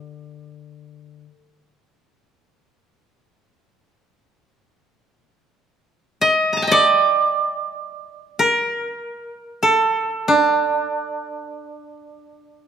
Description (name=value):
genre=japanese traditional, Japanese chamber music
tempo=free time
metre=none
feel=none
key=D miyako bushi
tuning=A4 = 445 Hz
part: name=koto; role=melody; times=0.0-12.7 s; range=D4 to Bb5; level=-17 LUFS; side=right 2 dB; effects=none
part: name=koto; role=accompaniment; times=0.0-1.2 s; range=D3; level=-43 LUFS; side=left 11 dB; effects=none
room=moderate recital hall reverb, RT60 1.3 s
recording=none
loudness=-16 LUFS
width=side -8 dB against mid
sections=0.0-12.7 A section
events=none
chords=none